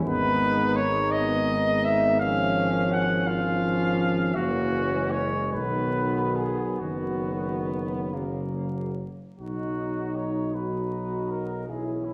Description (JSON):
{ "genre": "classical, hymn-like piece for brass band", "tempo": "45-58 BPM (dotted quarters)", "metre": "6/8", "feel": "rubato", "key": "B major", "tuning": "A4 = 440 Hz", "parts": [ { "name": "warm flugelhorn", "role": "second line", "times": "0.0-12.1 s", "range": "A#3 to E#4", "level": "-36 LUFS", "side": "equal", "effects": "none" }, { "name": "clear trombone", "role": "accompaniment", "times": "0.0-12.1 s", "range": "C#3 to G#3", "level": "-34 LUFS", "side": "equal", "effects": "none" }, { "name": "warm trombone section", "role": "accompaniment", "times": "0.0-12.1 s", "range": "F#3 to F#4", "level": "-34 LUFS", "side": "equal", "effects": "none" }, { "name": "mellow tuba", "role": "bass", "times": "0.0-12.1 s", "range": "F#1 to B1", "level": "-33 LUFS", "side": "equal", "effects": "none" }, { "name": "mellow cornet", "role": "melody", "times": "0.1-12.1 s", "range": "E4 to F#5", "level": "-30 LUFS", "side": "equal", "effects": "none" } ], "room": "wet recital hall reverb, RT60 1.6 s", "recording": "heard from further back in the room, vinyl crackle", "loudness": "-26 LUFS", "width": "mono", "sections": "0.0-9.4 A section; 9.4-12.1 B section", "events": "none", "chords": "0.1 G#m; 2.2 C#/G#; 4.3 F#7; 5.5 B; 6.8 B/F#; 8.1 F#; 9.4 B", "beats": "| 0.05 1.13 | 2.21 3.26 | 4.35 5.54 | 6.80 8.12 | 9.39 10.54 | 11.69" }